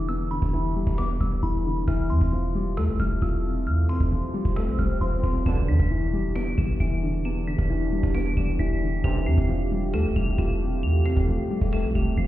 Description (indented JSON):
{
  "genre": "hip hop, trap",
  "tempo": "134 BPM",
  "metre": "4/4",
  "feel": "half-time",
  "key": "E phrygian",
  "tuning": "A4 = 436 Hz",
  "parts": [
    { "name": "delicate synth tine bell", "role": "melody", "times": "0.0-12.3 s", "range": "B5 to F7", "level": "-36 LUFS", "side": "right 1 dB", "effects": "chorus, phaser, tremolo, low-pass filter, ping-pong delay" },
    { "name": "felt-muted upright piano", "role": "accompaniment", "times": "0.0-12.3 s", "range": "E2 to F4", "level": "-28 LUFS", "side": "left 3 dB", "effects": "low-pass filter" },
    { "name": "warm 808-style bass", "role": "bass", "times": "0.0-12.3 s", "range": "E1 to E2", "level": "-24 LUFS", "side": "equal", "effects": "none" },
    { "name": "cajon", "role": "drums", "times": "0.1-12.2 s", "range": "none", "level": "-33 LUFS", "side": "equal", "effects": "none" },
    { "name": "swell and impact", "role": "sound effects", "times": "4.1-7.2 s", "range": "none", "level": "-34 LUFS", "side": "equal", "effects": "none" },
    { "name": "deep dark ambient pad", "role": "sustained chords", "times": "6.5-12.3 s", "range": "E3 to F5", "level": "-32 LUFS", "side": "right 4 dB", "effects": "chorus, built-in reverb" },
    { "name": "clear brass ensemble", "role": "stabs", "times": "5.5-5.8, 9.0-9.4 s", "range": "A1 to D3", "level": "-33 LUFS", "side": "right 5 dB", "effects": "none" }
  ],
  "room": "little or no reverb",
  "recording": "heard muffled through a wall, stone room reverb, EQ",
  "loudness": "-22 LUFS",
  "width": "side -14 dB against mid",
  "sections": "0.0-5.5 A section; 5.5-12.3 B section",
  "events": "swell 4.1-5.5; impact 5.5-7.2",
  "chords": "0.0 Em7; 1.9 Fadd9/E; 5.5 Em7; 9.0 Fadd9/E"
}